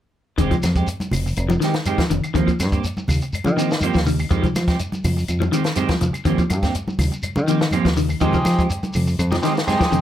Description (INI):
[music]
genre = afrobeat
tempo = 123 BPM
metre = 4/4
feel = straight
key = F minor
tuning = A4 = 440 Hz
[part]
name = semi-hollow electric guitar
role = arpeggios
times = 0.4-10.0 s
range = Eb3 to F3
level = -22 LUFS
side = left 4 dB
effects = vibrato effect
[part]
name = clean electric guitar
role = stabs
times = 0.4-10.0 s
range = Eb3 to G4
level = -24 LUFS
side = right 5 dB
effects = lush chorus
[part]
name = fingered electric bass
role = bass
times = 0.4-10.0 s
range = F1 to F3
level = -22 LUFS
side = equal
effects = none
[part]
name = compact cocktail drum kit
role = drums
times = 0.4-10.0 s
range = hi-hat, kick drum, snare drum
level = -24 LUFS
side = equal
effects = none
[part]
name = congas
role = percussion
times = 0.4-10.0 s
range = none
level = -27 LUFS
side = equal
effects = none
[part]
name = shekere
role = percussion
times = 0.4-10.0 s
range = none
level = -30 LUFS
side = left 1 dB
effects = none
[part]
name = claves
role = percussion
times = 0.6-9.8 s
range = none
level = -35 LUFS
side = left 2 dB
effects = none
[part]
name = combo organ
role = accompaniment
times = 8.2-10.0 s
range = Ab3 to G4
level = -23 LUFS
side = equal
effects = spring reverb
[sound]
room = moderate club reverb, RT60 0.6 s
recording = none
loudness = -18 LUFS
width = side -11 dB against mid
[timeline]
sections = 0.4-10.0 A section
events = none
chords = 0.4 Fm9; 2.4 Eb69; 4.3 Fm9; 6.3 Eb69; 8.2 Fm9